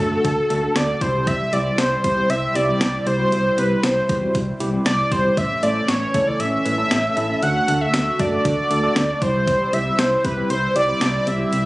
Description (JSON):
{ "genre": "synth-pop", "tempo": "117 BPM", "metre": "4/4", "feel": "straight", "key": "unclear", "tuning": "A4 = 439 Hz", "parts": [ { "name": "wide unison lead", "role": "melody", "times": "0.0-11.7 s", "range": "A4 to F#5", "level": "-20 LUFS", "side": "equal", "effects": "tape echo" }, { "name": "tine electric piano", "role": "accompaniment", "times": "0.0-11.6 s", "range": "G3 to B4", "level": "-25 LUFS", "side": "equal", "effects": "medium stereo tremolo" }, { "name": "chorused pulse-width pad", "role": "sustained chords", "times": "0.0-11.7 s", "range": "C3 to F#4", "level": "-27 LUFS", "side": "equal", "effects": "none" }, { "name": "solid FM bass", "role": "bass", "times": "0.0-11.7 s", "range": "A1 to F#2", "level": "-26 LUFS", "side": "equal", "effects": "none" }, { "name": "clean 12-bit digital drum machine", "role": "drums", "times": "0.2-11.6 s", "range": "hi-hat, kick drum, snare drum", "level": "-24 LUFS", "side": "equal", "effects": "none" } ], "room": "moderate lush hall reverb, RT60 1.6 s, digital ambience", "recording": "recorded on a phone in the room, studio ambience, compression, nothing above 11.0 kHz", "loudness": "-17 LUFS", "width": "side -19 dB against mid", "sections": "0.0-11.7 A section", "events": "none", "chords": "0.0 D; 1.0 C; 5.4 A; 7.4 D; 9.2 C" }